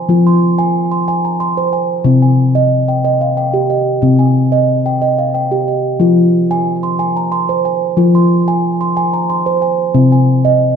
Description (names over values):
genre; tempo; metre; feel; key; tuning
world meditative, meditative tuned percussion; 91 BPM; 3/4; straight; F minor; A4 = 437 Hz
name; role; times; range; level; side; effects
steel tongue drum; solo; 0.0-10.8 s; C3 to C6; -11 LUFS; equal; diffuse ambient delay
room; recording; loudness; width
wet echo chamber reverb, RT60 1.5 s, small room ambience; dark, warm production; -11 LUFS; side -7 dB against mid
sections
0.0-10.8 A section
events
none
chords
0.0 Fm; 2.1 Cm; 6.0 Fm; 9.9 Cm